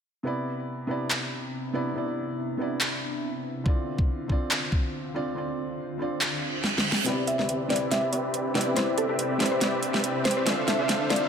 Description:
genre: future bass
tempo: 141 BPM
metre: 4/4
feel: swing 54% on 16ths, half-time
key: C major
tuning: A4 = 441 Hz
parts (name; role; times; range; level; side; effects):
- felt-muted upright piano; accompaniment; 0.2-11.3 s; C3 to D5; -32 LUFS; right 1 dB; sidechain pumping, ping-pong delay
- shimmering ambient pad; sustained chords; 1.1-11.3 s; D2 to B4; -36 LUFS; left 1 dB; chorus, built-in reverb, phaser, sidechain pumping
- dubstep drum kit; drums; 1.1-11.2 s; handclaps, hi-hat, snare drum; -28 LUFS; equal; none
- electronic kick drum; drums; 3.7-4.8 s; none; -24 LUFS; equal; none
- reverse cymbal and riser; sound effects; 6.4-11.3 s; none; -35 LUFS; right 3 dB; none
- supersaw chords; riff; 7.1-11.3 s; C4 to F5; -28 LUFS; equal; vintage 12-bit sampler grit, sidechain pumping, low-pass filter
- saturated sub bass; bass; 7.1-11.3 s; none; barely audible; none; none
- mallet-like synth pluck; melody; 7.3-11.2 s; A4 to E5; -29 LUFS; equal; chorus, sidechain pumping, ping-pong delay
room: moderate lush hall reverb, RT60 2.0 s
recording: high-pass filter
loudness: -25 LUFS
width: side -7 dB against mid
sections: 0.3-7.1 A section; 7.1-11.3 B section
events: filter sweep on ambient pad 0.3-7.1, 7.1-11.3; kick drops out 5.4-7.1; reverse cymbal 6.4-7.1; drum fill 6.6-7.1, 7.1-11.3; build-up 7.1-11.3; filter sweep on supersaw synth 7.1-11.3; filter sweep on synth pluck 7.1-11.3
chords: 0.3 Cmaj9; 3.7 Dm7; 7.1 Cmaj9; 10.5 Dm7

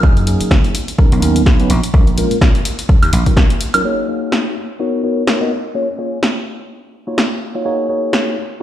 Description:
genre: filtered disco house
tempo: 126 BPM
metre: 4/4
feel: swing 57% on 16ths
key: F# major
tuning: A4 = 440 Hz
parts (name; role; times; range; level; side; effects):
- mellow tine electric piano; accompaniment; 0.0-8.6 s; F#3 to D#5; -18 LUFS; equal; phaser, sidechain pumping, low-pass filter
- dry thumbed slap bass; bass; 0.0-3.2 s; F#1 to A#2; -16 LUFS; equal; sidechain pumping, low-pass filter
- electronic kick drum; drums; 0.0-3.5 s; none; -12 LUFS; equal; overdrive
- punchy analog drum machine; drums; 0.2-8.2 s; hi-hat, snare drum, woodblock; -19 LUFS; equal; overdrive, sidechain pumping on hats, sidechain pumping on perc
room: light reverb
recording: played on a big sound system in a bare room, large studio reverb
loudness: -13 LUFS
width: side -12 dB against mid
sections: 0.0-3.8 A section; 3.8-8.6 B section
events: filter sweep 0.0-3.8; filter sweep on tine electric piano 3.8-8.6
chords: 0.0 F#69; 0.7 Bmaj7; 1.7 A#m7; 2.9 D#m9; 3.8 F#69; 4.6 Bmaj7; 5.5 A#m7; 6.7 D#m9; 7.7 F#69

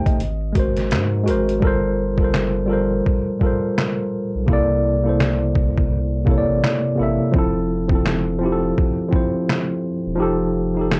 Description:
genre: lo-fi hip hop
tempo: 84 BPM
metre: 4/4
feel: swing 60% on 16ths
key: G minor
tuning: A4 = 440 Hz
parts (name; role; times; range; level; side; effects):
- mellow tine electric piano; accompaniment; 0.0-11.0 s; C3 to A5; -22 LUFS; equal; low-pass filter
- saturated sub bass; bass; 0.0-11.0 s; E1 to Ab2; -27 LUFS; equal; transformer saturation
- trip hop sampler-style drum kit; drums; 0.1-11.0 s; handclaps, hi-hat, kick drum, snare drum; -23 LUFS; equal; none
room: moderate small room reverb, RT60 0.5 s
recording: worn, warbling old tape, cassette tape, warbly pitch drift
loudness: -20 LUFS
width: mono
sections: 0.0-1.6 A section; 1.6-11.0 B section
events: hi-hats muted 1.6-11.0; kick muted 10.2-11.0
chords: 0.2 Ab9; 1.6 Gm11; 4.5 C13; 7.3 Fmaj7; 10.2 F9

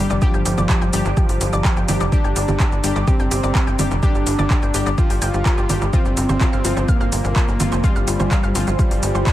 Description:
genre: melodic techno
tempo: 126 BPM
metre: 4/4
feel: straight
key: G phrygian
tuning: A4 = 440 Hz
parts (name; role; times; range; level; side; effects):
- fat analog lead; melody; 0.0-9.3 s; F3 to F4; -24 LUFS; equal; dub echo
- deep dark ambient pad; sustained chords; 0.2-9.3 s; F4 to D6; -30 LUFS; right 2 dB; chorus, built-in reverb, sidechain pumping
- synth brass stab; stabs; 0.0-9.3 s; F3 to G4; -28 LUFS; left 4 dB; chorus, sidechain pumping, dub echo
- tight sequencer bass; bass; 0.0-9.2 s; F1 to G1; -22 LUFS; equal; sidechain pumping
- analog pluck; arpeggios; 0.1-9.3 s; F4 to G5; -29 LUFS; left 1 dB; chorus, sidechain pumping, dub echo
- deep house drum kit; drums; 0.1-9.3 s; congas, handclaps, hi-hat, shaker; -25 LUFS; right 2 dB; overdrive, studio reverb, dub echo
- electronic kick drum; drums; 0.2-9.3 s; none; -18 LUFS; equal; overdrive, studio reverb
room: digital ambience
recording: echo-heavy mix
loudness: -16 LUFS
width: side -14 dB against mid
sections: 0.0-9.3 A section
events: none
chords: 0.0 Gm; 5.9 Fm

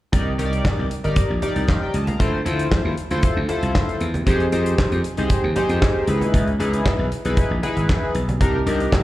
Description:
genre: early-eighties boogie funk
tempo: 116 BPM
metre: 4/4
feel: straight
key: unclear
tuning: A4 = 439 Hz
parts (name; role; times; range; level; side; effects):
- chorused polysynth; accompaniment; 0.1-9.0 s; D4 to Bb5; -23 LUFS; left 1 dB; none
- slap bass; bass; 0.1-8.9 s; G1 to F2; -22 LUFS; equal; none
- damped 70s drum kit; drums; 0.1-9.0 s; handclaps, hi-hat, kick drum, snare drum; -21 LUFS; equal; none
- congas; percussion; 0.4-9.0 s; none; -30 LUFS; right 2 dB; none
room: light reverb, small room reverb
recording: live gig heard through the venue's PA, club reverb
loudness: -18 LUFS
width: side -16 dB against mid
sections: 0.1-9.0 A section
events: none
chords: 0.1 Cm9; 2.2 Dm9; 4.3 Fm9; 6.1 Dbm9; 8.4 Cm9

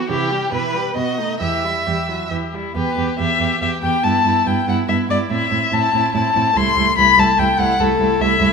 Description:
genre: quick classical-period movement for string quartet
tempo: 131-148 BPM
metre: 3/4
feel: rubato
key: E minor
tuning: A4 = 444 Hz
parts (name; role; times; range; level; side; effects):
- rich violin; melody; 0.0-8.5 s; D#4 to C6; -18 LUFS; left 6 dB; none
- rich violin; second line; 0.0-8.5 s; E4 to E5; -24 LUFS; right 2 dB; none
- rich viola; accompaniment; 0.0-8.5 s; E3 to C4; -24 LUFS; right 6 dB; none
- warm cello; bass; 0.0-8.5 s; C2 to C3; -22 LUFS; right 3 dB; none
room: wet recital hall reverb, RT60 1.5 s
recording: minimal, uncompressed stereo recording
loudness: -15 LUFS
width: side -5 dB against mid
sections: 0.0-2.8 A section; 2.8-8.5 A section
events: none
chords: 0.1 C; 0.5 Em/B; 1.0 B7; 1.4 Em; 4.0 Em/G; 5.3 Am; 6.6 Am/C

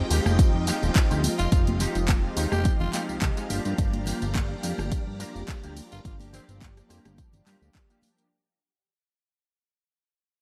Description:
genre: nu-disco, nu disco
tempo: 106 BPM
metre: 4/4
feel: swing 54% on 16ths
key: unclear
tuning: A4 = 440 Hz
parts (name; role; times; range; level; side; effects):
- mellow synth brass; accompaniment; 0.0-8.3 s; F3 to G4; -36 LUFS; equal; chorus, vintage 12-bit sampler grit, sidechain pumping, slapback echo
- string machine, full ensemble; sustained chords; 0.0-8.3 s; F4 to Bb5; -40 LUFS; equal; phaser, ensemble chorus, sidechain pumping
- fat analog bass; bass; 0.0-7.7 s; Eb1 to G2; -30 LUFS; equal; none
- electric guitar with an envelope filter; riff; 0.1-8.2 s; Ab3 to Bb4; -37 LUFS; equal; ensemble chorus
- house drum kit; drums; 0.1-8.3 s; handclaps, hi-hat, rim click, tambourine; -35 LUFS; equal; overdrive
- congas; percussion; 0.3-8.1 s; none; -37 LUFS; equal; none
- electronic kick drum; drums; 0.4-7.9 s; none; -26 LUFS; equal; overdrive
- growling tenor saxophone; melody; 1.4-6.6 s; C4 to G4; -38 LUFS; equal; tape echo
room: digital ambience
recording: none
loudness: -25 LUFS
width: mono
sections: 0.0-8.3 A section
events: drop 0.0-8.3; fade-out 0.0-8.3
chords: 0.0 Fm9; 3.5 Gm7

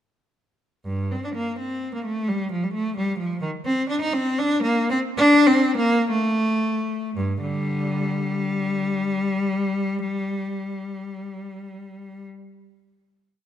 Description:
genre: classical, baroque-style suite movement for unaccompanied cello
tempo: 52-88 BPM (dotted quarters)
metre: 6/8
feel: rubato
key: G minor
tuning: A4 = 440 Hz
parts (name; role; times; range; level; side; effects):
- clear cello; solo; 0.8-12.2 s; G2 to Eb4; -21 LUFS; equal; none
room: moderate scoring stage reverb, RT60 1.6 s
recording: none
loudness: -21 LUFS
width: side -10 dB against mid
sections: 0.9-7.2 A section; 7.2-11.5 final chord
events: slowing down 3.0-7.2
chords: none

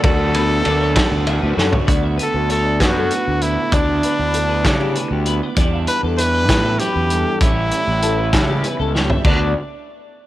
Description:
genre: math rock and midwest emo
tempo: 65 BPM (dotted quarters)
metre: 6/8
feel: straight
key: D major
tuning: A4 = 441 Hz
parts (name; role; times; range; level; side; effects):
- bright trumpet; melody; 0.0-9.5 s; D4 to B4; -21 LUFS; equal; none
- twelve-string electric guitar; accompaniment; 0.0-9.5 s; D2 to F#4; -25 LUFS; right 7 dB; cassette tape
- twelve-string electric guitar; arpeggios; 0.0-9.5 s; F#4 to E5; -26 LUFS; left 8 dB; lush chorus, cassette tape
- overdriven semi-hollow guitar; riff; 0.0-1.9 s; D3 to D4; -28 LUFS; equal; none
- fuzz fingered electric bass; bass; 0.0-9.5 s; A1 to C#3; -20 LUFS; equal; overdrive
- loose indie drum kit; drums; 0.0-9.4 s; crash cymbal, hi-hat, kick drum, ride cymbal, snare drum, toms; -18 LUFS; equal; cassette tape
room: little or no reverb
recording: home recording on cassette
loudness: -15 LUFS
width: side -14 dB against mid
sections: 0.0-1.9 A section; 1.9-9.3 B section; 9.3-10.3 C section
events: drum fill 1.6-1.9, 8.9-9.3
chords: 0.0 D6; 3.7 G6/D; 5.6 Em7; 7.4 A7; 9.3 D6

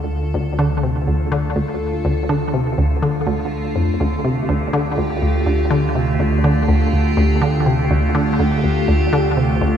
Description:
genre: ambient, sequencer-driven space music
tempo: 123 BPM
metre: 4/4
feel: straight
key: D minor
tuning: A4 = 439 Hz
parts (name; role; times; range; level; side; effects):
- evolving wavetable pad; sustained chords; 0.0-9.8 s; D3 to A4; -21 LUFS; equal; phaser, built-in reverb
- resonant blip pluck; riff; 0.0-9.8 s; D2 to D3; -18 LUFS; equal; chorus, cassette tape, tape echo
- fat analog bass; bass; 0.0-9.8 s; D2; -23 LUFS; equal; tube saturation
room: wet echo chamber reverb, RT60 2.2 s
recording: echo-heavy mix, cassette tape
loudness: -16 LUFS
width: side -8 dB against mid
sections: 0.0-9.8 A section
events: fade-in on ambient pad 0.0-9.8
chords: 0.0 Dm

